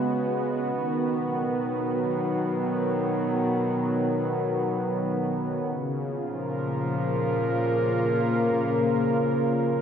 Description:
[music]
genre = ambient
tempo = free time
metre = none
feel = none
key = B lydian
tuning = A4 = 440 Hz
[part]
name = warm analog pad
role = sustained chords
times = 0.0-9.8 s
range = C#3 to B4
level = -24 LUFS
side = equal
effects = chorus
[part]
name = dark chamber cello section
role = bass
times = 0.0-9.8 s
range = A#2 to C#3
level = -34 LUFS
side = left 1 dB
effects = none
[sound]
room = wet cathedral reverb, RT60 6.6 s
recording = none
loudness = -24 LUFS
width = side -8 dB against mid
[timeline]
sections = 0.0-9.8 A section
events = fade-in on cello section 0.0-9.8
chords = 0.0 C#7sus4; 0.7 B; 5.7 A#m

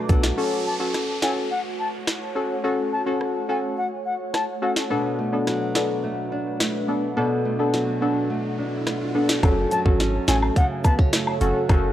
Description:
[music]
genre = dancehall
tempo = 106 BPM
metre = 4/4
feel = straight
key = F# minor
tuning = A4 = 435 Hz
[part]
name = ethereal airy pad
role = sustained chords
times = 0.0-11.9 s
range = A3 to D6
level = -31 LUFS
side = equal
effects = ensemble chorus, built-in reverb, sidechain pumping
[part]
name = nylon-string guitar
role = arpeggios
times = 0.0-0.9, 4.9-11.9 s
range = F#2 to D4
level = -28 LUFS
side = right 2 dB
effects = analog delay
[part]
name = deep mellow chord stab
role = accompaniment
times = 0.1-11.9 s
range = B3 to A4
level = -24 LUFS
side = left 1 dB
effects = chorus
[part]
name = clean 808-style bass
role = bass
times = 0.1-0.3, 9.4-11.9 s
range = F#1 to B1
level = -23 LUFS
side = equal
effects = none
[part]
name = island pop drum kit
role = drums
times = 0.1-11.8 s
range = hi-hat, kick drum, rim click, snare drum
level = -21 LUFS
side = equal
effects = none
[part]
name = cabasa and woodblock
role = percussion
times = 0.1-0.2, 9.4-11.8 s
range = none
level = -31 LUFS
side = left 1 dB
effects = none
[part]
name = downlifter and riser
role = sound effects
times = 0.4-9.4 s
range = none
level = -37 LUFS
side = right 2 dB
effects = none
[part]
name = wooden flute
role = melody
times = 0.7-4.7, 9.7-10.9 s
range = F#5 to A5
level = -28 LUFS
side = left 2 dB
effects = analog delay
[sound]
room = light reverb, digital ambience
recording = dry, gritty hardware recording, cassette tape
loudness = -20 LUFS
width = side -12 dB against mid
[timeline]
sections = 0.4-9.4 A section; 9.4-11.9 B section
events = riser 7.4-9.4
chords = 0.4 F#m; 4.9 Bm7; 9.4 F#m

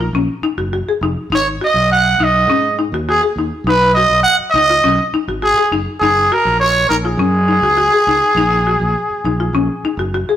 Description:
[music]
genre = afrobeat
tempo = 102 BPM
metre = 4/4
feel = straight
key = unclear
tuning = A4 = 441 Hz
[part]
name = growling trumpet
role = melody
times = 0.0-10.1 s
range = G#4 to F#5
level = -13 LUFS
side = right 1 dB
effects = none
[part]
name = buzzing marimba with hard mallets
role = arpeggios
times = 0.0-10.4 s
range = C#4 to G#4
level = -19 LUFS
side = left 4 dB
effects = none
[part]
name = fingered electric bass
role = bass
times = 0.0-10.3 s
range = E#1 to G#2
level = -20 LUFS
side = equal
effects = none
[sound]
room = wet stone room reverb, RT60 1.2 s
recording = rough rehearsal-room recording, tube saturation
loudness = -12 LUFS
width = side -11 dB against mid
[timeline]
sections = 0.0-10.4 A section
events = none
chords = 0.0 F#maj7; 1.3 G#m7; 6.0 F#add9

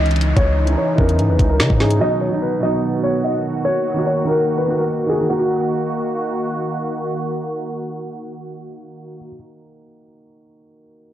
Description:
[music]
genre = hip hop, drill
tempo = 146 BPM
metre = 4/4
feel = half-time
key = Eb phrygian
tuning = A4 = 440 Hz
[part]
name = dark concert grand piano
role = melody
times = 0.0-6.5 s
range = Gb4 to Eb5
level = -21 LUFS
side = left 1 dB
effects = low-pass filter, tape echo
[part]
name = felt-muted upright piano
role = accompaniment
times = 0.0-11.1 s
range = B2 to Gb4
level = -23 LUFS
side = right 2 dB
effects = low-pass filter
[part]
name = sweeping resonant pad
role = sustained chords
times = 0.0-9.3 s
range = Db3 to F#4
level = -24 LUFS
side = right 1 dB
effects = chorus, low-pass filter
[part]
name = long sustained 808-style bass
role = bass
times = 0.0-2.0 s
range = Db2 to Db3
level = -17 LUFS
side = equal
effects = none
[part]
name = downlifter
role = sound effects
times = 0.0-2.0 s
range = none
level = -32 LUFS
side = equal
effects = none
[part]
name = drill drum kit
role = drums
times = 0.1-2.0 s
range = finger snaps, hi-hat, kick drum, snare drum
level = -18 LUFS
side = equal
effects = overdrive
[sound]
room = digital ambience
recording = dry, gritty hardware recording, transformer saturation, cassette tape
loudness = -16 LUFS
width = side -12 dB against mid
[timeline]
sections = 0.0-5.3 A section; 5.3-8.6 B section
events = filter sweep 0.0-5.3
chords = 0.0 Dbmadd9; 2.0 B; 3.7 Ebm

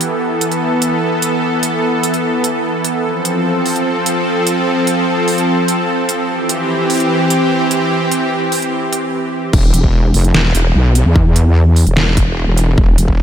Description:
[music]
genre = heavy wobble dubstep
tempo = 148 BPM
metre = 4/4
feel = half-time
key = unclear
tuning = A4 = 440 Hz
[part]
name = supersaw pad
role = sustained chords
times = 0.0-9.5 s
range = E3 to A4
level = -14 LUFS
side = equal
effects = sidechain pumping
[part]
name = dubstep drum kit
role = drums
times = 0.0-13.1 s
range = crash cymbal, hi-hat, snare drum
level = -18 LUFS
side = right 1 dB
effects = high-pass filter on hats, high-pass filter on cymbals, high-pass filter on snare
[part]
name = wobble bass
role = bass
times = 9.5-13.2 s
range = E1 to E2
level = -11 LUFS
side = equal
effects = chorus, overdrive
[part]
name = electronic kick drum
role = drums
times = 9.5-13.2 s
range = none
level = -13 LUFS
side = equal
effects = none
[sound]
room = moderate huge ambient reverb, RT60 4.0 s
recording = dreamy mix soaked in reverb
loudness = -12 LUFS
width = side -9 dB against mid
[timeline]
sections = 0.0-9.5 A section; 9.5-13.2 B section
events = build-up 0.0-9.5; drop 9.5-13.2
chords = 0.0 Asus2; 3.0 F; 6.3 C; 9.5 N.C.

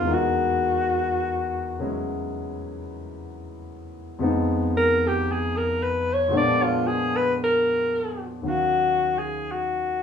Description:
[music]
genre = jazz ballad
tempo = 57 BPM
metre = 4/4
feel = swing 68% on 8ths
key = Eb minor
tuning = A4 = 440 Hz
[part]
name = breathy alto saxophone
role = melody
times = 0.0-10.0 s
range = F4 to D5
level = -22 LUFS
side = left 1 dB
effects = none
[part]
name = clear concert grand piano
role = accompaniment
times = 0.0-10.0 s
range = Eb2 to F5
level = -26 LUFS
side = left 2 dB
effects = none
[sound]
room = wet studio reverb, RT60 0.7 s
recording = band playing live in one room, small room ambience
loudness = -21 LUFS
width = side -7 dB against mid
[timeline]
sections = 0.0-8.4 A section; 8.4-10.0 B section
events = alto saxophone solo 0.0-8.4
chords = 0.0 Emaj9#11; 4.2 Fm7b5; 6.3 Bb7b9; 8.4 Ebm9

